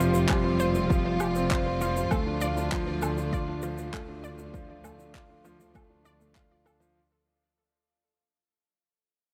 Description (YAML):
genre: piano and strings electronica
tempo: 99 BPM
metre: 4/4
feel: straight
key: unclear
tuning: A4 = 440 Hz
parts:
  - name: warm studio string section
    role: sustained chords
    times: 0.0-6.9 s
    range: C3 to F4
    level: -35 LUFS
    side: equal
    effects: none
  - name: unison pluck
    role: arpeggios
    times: 0.0-6.7 s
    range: F4 to D5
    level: -40 LUFS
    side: equal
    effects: none
  - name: felt-muted upright piano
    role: riff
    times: 0.0-7.0 s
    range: F3 to F5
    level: -32 LUFS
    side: equal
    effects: delay
  - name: dark studio double bass section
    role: bass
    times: 0.0-6.9 s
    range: F1 to D2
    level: -34 LUFS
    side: equal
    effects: tube saturation, sidechain pumping
  - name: shaker, handclaps and woodblock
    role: drums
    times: 0.0-6.9 s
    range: none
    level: -38 LUFS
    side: equal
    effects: none
  - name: electronic kick drum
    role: drums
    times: 0.3-6.5 s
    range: none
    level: -32 LUFS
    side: equal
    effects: overdrive
room: light reverb, small room ambience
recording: none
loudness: -27 LUFS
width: mono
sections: 0.0-7.0 A section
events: drop 0.0-7.0; fade-out 0.0-7.0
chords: 0.0 Fsus2; 2.1 Dm